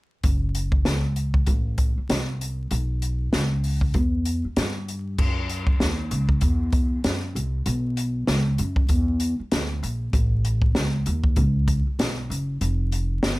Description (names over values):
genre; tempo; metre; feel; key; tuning
hip hop, jazz-hop; 97 BPM; 4/4; swing 60% on 16ths; F# dorian; A4 = 440 Hz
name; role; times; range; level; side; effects
upright bass; bass; 0.2-13.4 s; F1 to G2; -24 LUFS; equal; none
open jazz drum kit; drums; 0.2-13.4 s; crash cymbal, hi-hat, kick drum, snare drum; -23 LUFS; equal; none
room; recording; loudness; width
little or no reverb; vinyl crackle; -21 LUFS; side -20 dB against mid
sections
0.2-5.2 A section; 5.2-13.4 B section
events
none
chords
none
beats
| 0.24 0.85 1.47 2.09 | 2.71 3.33 3.95 4.57 | 5.18 5.80 6.42 7.04 | 7.66 8.28 8.90 9.52 | 10.13 10.75 11.37 11.99 | 12.61 13.23